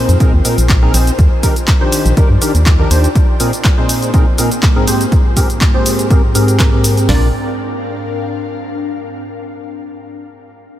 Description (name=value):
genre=piano house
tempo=122 BPM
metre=4/4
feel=swing 54% on 16ths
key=Bb mixolydian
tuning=A4 = 440 Hz
part: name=percussive organ stab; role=riff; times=0.0-7.3 s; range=Ab2 to D5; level=-17 LUFS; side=equal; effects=ensemble chorus, sidechain pumping, diffuse ambient delay
part: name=ethereal airy pad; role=texture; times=0.0-9.0 s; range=Ab2 to Ab5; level=-21 LUFS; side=equal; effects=ensemble chorus, built-in reverb, sidechain pumping
part: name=organ-like FM bass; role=bass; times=0.1-3.1, 7.1-7.3 s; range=Bb1 to G2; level=-12 LUFS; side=equal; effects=sidechain pumping
part: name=punchy analog drum machine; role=drums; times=0.1-7.1 s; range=cabasa, handclaps, hi-hat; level=-20 LUFS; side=equal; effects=none
part: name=punchy analog drum machine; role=drums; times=0.2-7.2 s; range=hi-hat, kick drum, snare drum, toms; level=-12 LUFS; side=equal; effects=none
room=light reverb, digital ambience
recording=none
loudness=-10 LUFS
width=side -12 dB against mid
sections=0.0-7.1 A section; 7.1-9.1 B section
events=filter sweep on synth stab 0.0-7.1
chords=0.0 Bb9sus4; 1.2 Ebmaj7; 3.2 Bb9sus4; 4.9 Abmaj9; 7.1 Bb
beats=0.20 0.69 | 1.19 1.68 2.17 2.66 | 3.15 3.65 4.14 4.63 | 5.12 5.61 6.11 6.60 | 7.09 7.58 8.07 8.56